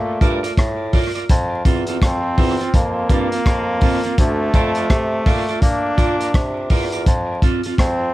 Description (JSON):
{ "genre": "roots reggae", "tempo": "83 BPM", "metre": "4/4", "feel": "swing 62% on 16ths", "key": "F major", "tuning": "A4 = 440 Hz", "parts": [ { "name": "brilliant trombone", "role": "melody", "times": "0.0-8.1 s", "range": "A3 to D4", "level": "-23 LUFS", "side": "equal", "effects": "tape echo" }, { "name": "warm bassoon", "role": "bass", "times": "0.0-8.1 s", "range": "D2 to Bb3", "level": "-23 LUFS", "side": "equal", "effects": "none" }, { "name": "clean electric guitar", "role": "accompaniment", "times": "0.2-7.7 s", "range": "C4 to D5", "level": "-25 LUFS", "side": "right 3 dB", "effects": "tape echo" }, { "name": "crunchy breakbeat drum kit", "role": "drums", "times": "0.2-8.0 s", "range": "hi-hat, kick drum, rim click", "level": "-17 LUFS", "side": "equal", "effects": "none" } ], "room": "little or no reverb", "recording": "vinyl crackle", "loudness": "-15 LUFS", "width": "side -16 dB against mid", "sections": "0.0-8.1 A section", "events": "none", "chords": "0.0 Bb; 1.3 F; 4.2 Dm; 5.6 Bb; 7.1 F" }